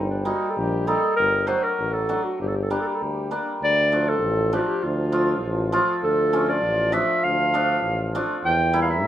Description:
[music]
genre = klezmer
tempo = 99 BPM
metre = 2/4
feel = straight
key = G harmonic minor, D minor from 3.6 s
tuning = A4 = 442 Hz
[part]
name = dark clarinet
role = melody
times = 0.0-9.1 s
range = D4 to G5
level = -22 LUFS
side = equal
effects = none
[part]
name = hammered dulcimer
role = accompaniment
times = 0.0-9.1 s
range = F3 to F4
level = -25 LUFS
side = equal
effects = none
[part]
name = warm tuba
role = bass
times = 0.0-9.1 s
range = G1 to E2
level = -26 LUFS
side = equal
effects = none
[sound]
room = moderate studio reverb, RT60 0.5 s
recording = minimal, uncompressed stereo recording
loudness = -20 LUFS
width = side -12 dB against mid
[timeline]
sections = 0.0-3.6 A section; 3.6-9.1 B section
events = none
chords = 0.0 Eb/G; 1.2 D/G; 2.4 Gm; 3.6 Dm; 8.4 Edim

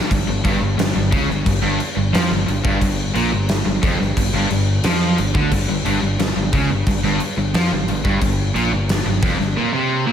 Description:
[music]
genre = hard rock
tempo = 89 BPM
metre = 4/4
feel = straight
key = G minor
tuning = A4 = 440 Hz
[part]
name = tight distorted guitar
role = riff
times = 0.0-10.1 s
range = F2 to D4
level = -25 LUFS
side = equal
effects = distortion
[part]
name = distorted electric guitar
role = riff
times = 0.1-10.1 s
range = F2 to F3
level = -23 LUFS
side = left 6 dB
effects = overdrive
[part]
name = overdriven semi-hollow guitar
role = riff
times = 0.1-10.1 s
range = F2 to F3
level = -23 LUFS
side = right 6 dB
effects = none
[part]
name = fuzz fingered electric bass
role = bass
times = 0.1-9.6 s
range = F1 to F2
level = -22 LUFS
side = equal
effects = overdrive
[part]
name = big rock drum kit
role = drums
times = 0.1-9.5 s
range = crash cymbal, kick drum, snare drum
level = -21 LUFS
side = equal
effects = none
[sound]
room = moderate lush hall reverb, RT60 1.6 s, small room reverb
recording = big arena sound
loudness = -16 LUFS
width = side -9 dB against mid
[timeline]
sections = 0.1-10.1 A section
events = none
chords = 0.1 Gm

